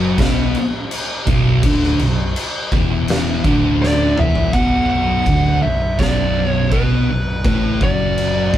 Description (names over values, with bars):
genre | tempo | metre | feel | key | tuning
stoner and doom metal | 82 BPM | 4/4 | straight | B minor | A4 = 439 Hz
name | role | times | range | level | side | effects
thick fuzz guitar | riff | 0.0-8.6 s | B1 to B3 | -19 LUFS | left 4 dB | distortion
thick fuzz guitar | riff | 0.0-8.6 s | B1 to B3 | -22 LUFS | right 7 dB | distortion
hollow-body short-scale fingered electric bass | bass | 0.0-8.6 s | B0 to B1 | -22 LUFS | equal | overdrive
oversized low-tuned drum kit | drums | 0.2-8.6 s | crash cymbal, kick drum, snare drum, toms | -20 LUFS | equal | none
fuzz lead guitar | melody | 3.8-8.6 s | B4 to F#5 | -20 LUFS | right 1 dB | distortion
room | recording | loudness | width
light reverb | band playing live in one room | -14 LUFS | side -12 dB against mid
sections
0.0-4.5 A section; 4.5-8.6 B section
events
drum fill 3.8-4.5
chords
0.0 Bm